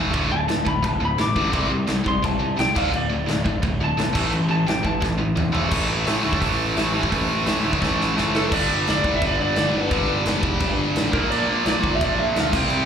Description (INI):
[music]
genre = punk rock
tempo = 172 BPM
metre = 4/4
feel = straight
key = unclear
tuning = A4 = 441 Hz
[part]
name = tight distorted guitar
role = riff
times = 0.0-12.9 s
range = D2 to C4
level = -22 LUFS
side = equal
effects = distortion, slapback echo
[part]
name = fuzz picked electric bass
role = bass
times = 0.0-12.8 s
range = D1 to A2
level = -26 LUFS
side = equal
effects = overdrive
[part]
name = big rock drum kit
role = drums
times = 0.1-12.8 s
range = crash cymbal, hi-hat, kick drum, snare drum, toms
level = -25 LUFS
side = equal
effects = none
[part]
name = lightly driven lead guitar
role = melody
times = 0.3-5.0, 8.4-12.9 s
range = A4 to D6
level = -25 LUFS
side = equal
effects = slapback echo
[sound]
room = small room reverb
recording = live gig heard through the venue's PA, club reverb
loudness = -19 LUFS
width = side -8 dB against mid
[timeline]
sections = 0.0-5.7 A section; 5.7-8.5 B section; 8.5-12.9 C section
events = lead electric guitar solo 0.0-5.7; drum fill 5.0-5.7, 7.8-8.5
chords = 0.1 D5; 1.5 C5; 2.8 D5; 4.2 A5; 8.5 G5; 11.1 Bb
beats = | 0.14 0.49 0.84 1.19 | 1.54 1.89 2.23 2.58 | 2.93 3.28 3.63 3.98 | 4.33 4.68 5.03 5.38 | 5.73 6.08 6.42 6.77 | 7.12 7.47 7.82 8.17 | 8.52 8.87 9.21 9.56 | 9.91 10.26 10.61 10.96 | 11.30 11.65 12.00 12.35 | 12.70